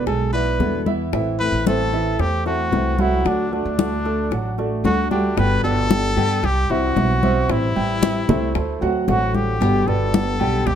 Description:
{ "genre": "latin, Cuban son and guajira", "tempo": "113 BPM", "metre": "4/4", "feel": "straight", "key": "G major", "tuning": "A4 = 440 Hz", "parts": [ { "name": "bright trumpet", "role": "melody", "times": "0.0-10.8 s", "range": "D4 to B4", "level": "-24 LUFS", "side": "left 2 dB", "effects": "plate reverb" }, { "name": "flamenco guitar", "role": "accompaniment", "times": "0.0-10.7 s", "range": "B2 to G4", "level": "-25 LUFS", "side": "left 4 dB", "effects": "none" }, { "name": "warm grand piano", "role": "arpeggios", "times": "0.0-10.8 s", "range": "E3 to G#5", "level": "-24 LUFS", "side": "right 5 dB", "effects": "none" }, { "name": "upright bass", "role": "bass", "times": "0.0-10.8 s", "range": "G1 to G2", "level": "-23 LUFS", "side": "right 1 dB", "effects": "none" }, { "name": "bongos", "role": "percussion", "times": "0.1-10.8 s", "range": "none", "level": "-28 LUFS", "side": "left 10 dB", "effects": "none" }, { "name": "congas", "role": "percussion", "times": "0.1-10.8 s", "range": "none", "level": "-23 LUFS", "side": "left 1 dB", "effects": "none" } ], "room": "light reverb", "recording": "none", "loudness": "-17 LUFS", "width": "side -9 dB against mid", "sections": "0.0-5.4 A section; 5.4-10.8 B section", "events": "none", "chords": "0.0 E7; 1.1 Am; 3.3 D; 5.4 G; 6.4 C; 7.5 Am7; 8.6 D7; 9.6 G" }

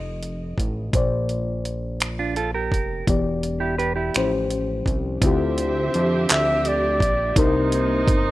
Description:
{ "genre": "slow six-eight R&B", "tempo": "56 BPM (dotted quarters)", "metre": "6/8", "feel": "straight", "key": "D minor", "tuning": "A4 = 437 Hz", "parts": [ { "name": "breathy flugelhorn", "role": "melody", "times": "0.0-0.6, 5.2-8.3 s", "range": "C5 to E5", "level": "-24 LUFS", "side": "equal", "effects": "none" }, { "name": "reed electric piano", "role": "accompaniment", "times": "0.0-8.3 s", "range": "A2 to Eb5", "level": "-26 LUFS", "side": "left 4 dB", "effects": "none" }, { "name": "fat analog bass", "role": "bass", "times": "0.0-8.3 s", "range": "E1 to F2", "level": "-27 LUFS", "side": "right 1 dB", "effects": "none" }, { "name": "dusty soul sampler-style drum kit", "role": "drums", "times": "0.2-8.2 s", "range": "finger snaps, handclaps, hi-hat, kick drum", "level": "-22 LUFS", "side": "right 1 dB", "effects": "none" }, { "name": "clean electric guitar", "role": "second line", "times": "2.2-4.3 s", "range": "D4 to B4", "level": "-25 LUFS", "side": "right 4 dB", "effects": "none" }, { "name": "warm studio string section", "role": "sustained chords", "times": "5.2-8.3 s", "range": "C3 to E5", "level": "-26 LUFS", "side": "right 2 dB", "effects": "none" } ], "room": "little or no reverb", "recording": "rough home demo mix", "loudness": "-20 LUFS", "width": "side -16 dB against mid", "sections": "0.0-5.2 A section; 5.2-8.3 B section", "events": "none", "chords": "0.0 F9; 0.9 Bbadd9; 3.1 Em7; 4.1 A7alt; 5.2 Dm11; 7.4 Cm7" }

